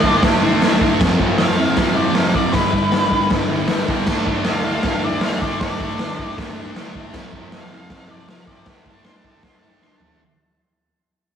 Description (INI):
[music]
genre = garage rock duo or trio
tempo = 157 BPM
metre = 4/4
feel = straight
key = unclear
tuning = A4 = 445 Hz
[part]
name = octave-fuzz lead guitar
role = melody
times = 0.0-10.2 s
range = B4 to C6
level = -24 LUFS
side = left 1 dB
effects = distortion, analog delay
[part]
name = thick fuzz guitar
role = riff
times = 0.0-10.2 s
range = F2 to D4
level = -20 LUFS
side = equal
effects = distortion
[part]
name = raw garage drum kit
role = drums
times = 0.0-10.1 s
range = crash cymbal, hi-hat, kick drum, snare drum, toms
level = -19 LUFS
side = equal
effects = none
[sound]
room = light reverb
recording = rough rehearsal-room recording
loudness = -15 LUFS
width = side -8 dB against mid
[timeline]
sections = 0.0-10.2 A section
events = fade-out 0.0-10.2; drum fill 9.8-10.2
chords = 0.0 D5; 1.0 F5; 2.5 G; 4.1 D5; 7.1 F5; 8.7 D5